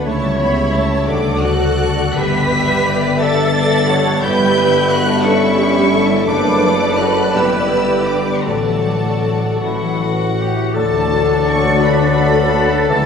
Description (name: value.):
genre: classical, slow romantic movement for symphony orchestra.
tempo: 51-60 BPM (dotted quarters).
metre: 6/8.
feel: rubato.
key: D major.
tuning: A4 = 442 Hz.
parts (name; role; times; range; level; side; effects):
rich studio violin section; melody; 0.0-13.1 s; F#5 to B6; -23 LUFS; left 2 dB; none.
clear studio violin section; second line; 0.0-13.1 s; D4 to F#5; -22 LUFS; left 2 dB; none.
warm studio viola section; accompaniment; 0.0-13.1 s; E3 to E5; -20 LUFS; right 1 dB; none.
concert harp; arpeggios; 0.0-13.1 s; F#2 to A5; -20 LUFS; left 5 dB; none.
rich studio cello section; bass; 0.0-13.1 s; C#3 to B4; -22 LUFS; right 1 dB; none.
rich studio double bass section; bass; 0.0-13.1 s; F#1 to D2; -24 LUFS; right 2 dB; none.
warm tuba; bass; 0.0-13.1 s; F#1 to D2; -21 LUFS; equal; none.
clear clarinet; second line; 9.6-13.1 s; F#4 to C#5; -21 LUFS; left 3 dB; none.
warm bassoon; accompaniment; 10.7-13.1 s; E3 to F#3; -23 LUFS; left 2 dB; none.
mellow hollow flute section; second line; 10.8-13.1 s; A6; -23 LUFS; equal; none.
warm cor anglais; second line; 10.8-13.1 s; D5 to E5; -23 LUFS; right 1 dB; none.
clear French horn section; sustained chords; 10.8-13.1 s; A3 to F#4; -24 LUFS; left 3 dB; none.
bright trumpet; stabs; 10.8-13.1 s; A4; -23 LUFS; equal; none.
room: wet concert hall reverb, RT60 2.3 s.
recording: heard from further back in the room, small room ambience.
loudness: -13 LUFS.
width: side -6 dB against mid.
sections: 0.0-10.8 A section; 10.8-13.1 B section.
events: none.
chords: 0.1 A7/C#; 1.1 D; 2.2 Em7/G; 4.2 A7/G; 6.3 D/F#; 7.3 Em7/G; 8.5 D/A; 9.6 A; 10.8 D.